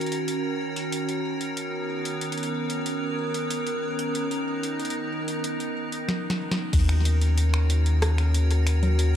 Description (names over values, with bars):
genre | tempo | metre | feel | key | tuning
IDM | 93 BPM | 4/4 | straight | Eb minor | A4 = 440 Hz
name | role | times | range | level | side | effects
icy glass pad | sustained chords | 0.0-9.2 s | Eb3 to Bb4 | -28 LUFS | right 1 dB | chorus, built-in reverb
booming analog drum machine | drums | 0.0-9.1 s | congas, crash cymbal, finger snaps, hi-hat, rim click, snare drum | -31 LUFS | equal | ping-pong delay
warm sub bass | bass | 6.7-9.2 s | Eb2 | -20 LUFS | equal | tube saturation
electronic kick drum | drums | 6.7-6.9 s | none | -23 LUFS | equal | none
room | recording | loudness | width
moderate plate reverb, RT60 3.2 s | dreamy mix soaked in reverb | -23 LUFS | side -10 dB against mid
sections
0.0-6.7 A section; 6.7-9.2 B section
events
drum fill 6.1-6.7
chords
0.0 Ebm7; 1.6 Bmaj9; 6.7 Ebm7